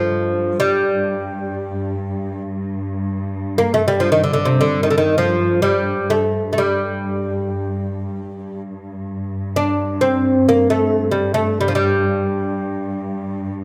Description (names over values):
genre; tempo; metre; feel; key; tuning
Turkish makam ensemble; free time; none; none; G makam ussak; A4 = 440 Hz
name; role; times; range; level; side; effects
oud; melody; 0.0-13.5 s; C3 to D4; -20 LUFS; equal; none
muted studio cello section; drone; 0.0-13.6 s; G2; -26 LUFS; equal; none
room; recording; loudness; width
moderate recital hall reverb, RT60 1.6 s; close, detailed microphones; -19 LUFS; mono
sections
0.0-13.6 A section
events
none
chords
none